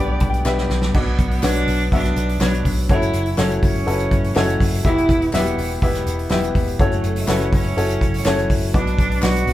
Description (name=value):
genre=piano-driven pop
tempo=123 BPM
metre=4/4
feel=straight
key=B minor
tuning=A4 = 440 Hz
part: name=clear cello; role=melody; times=0.0-9.5 s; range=A3 to D5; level=-25 LUFS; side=right 2 dB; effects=tape echo
part: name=clear upright piano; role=accompaniment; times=0.0-9.5 s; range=B2 to B5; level=-22 LUFS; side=left 2 dB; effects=none
part: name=tonewheel organ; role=sustained chords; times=0.0-9.5 s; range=E3 to B4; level=-30 LUFS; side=equal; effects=none
part: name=vintage muted fingered electric bass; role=bass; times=0.0-9.5 s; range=E1 to B1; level=-22 LUFS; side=equal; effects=none
part: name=natural country drum kit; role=drums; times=0.2-9.5 s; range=crash cymbal, hi-hat, kick drum, snare drum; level=-21 LUFS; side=equal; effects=none
part: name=group handclap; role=percussion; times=0.5-9.3 s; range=none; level=-33 LUFS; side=left 3 dB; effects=none
room=moderate large studio reverb, RT60 0.9 s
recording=band playing live in one room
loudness=-16 LUFS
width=side -14 dB against mid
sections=0.9-9.5 A section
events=upright piano fill 0.0-0.9; drum fill 0.5-0.9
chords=0.0 G/B; 0.9 Bm; 2.9 F#m7; 4.8 Em; 6.8 F#m7; 8.7 Bm